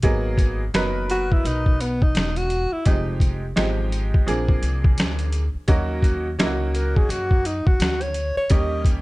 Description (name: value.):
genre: hip hop, jazz-hop.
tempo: 85 BPM.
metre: 4/4.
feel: swing 61% on 16ths.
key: G# minor.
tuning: A4 = 441 Hz.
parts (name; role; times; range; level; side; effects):
clear upright piano; accompaniment; 0.0-9.0 s; F3 to B4; -26 LUFS; right 2 dB; plate reverb.
upright bass; bass; 0.0-9.0 s; E1 to F#2; -26 LUFS; equal; none.
boom bap sampler-style drum kit; drums; 0.0-9.0 s; hi-hat, kick drum, snare drum; -20 LUFS; equal; vintage 12-bit sampler grit.
breathy alto saxophone; melody; 1.1-8.9 s; B3 to D#5; -25 LUFS; equal; plate reverb.
room: light reverb.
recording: dark, warm production.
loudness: -19 LUFS.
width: side -20 dB against mid.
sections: 0.0-9.0 A section.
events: alto saxophone solo 0.0-9.0.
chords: 0.0 G#m7; 2.9 Fm7; 4.3 A#7; 5.7 D#m7; 8.5 D#7.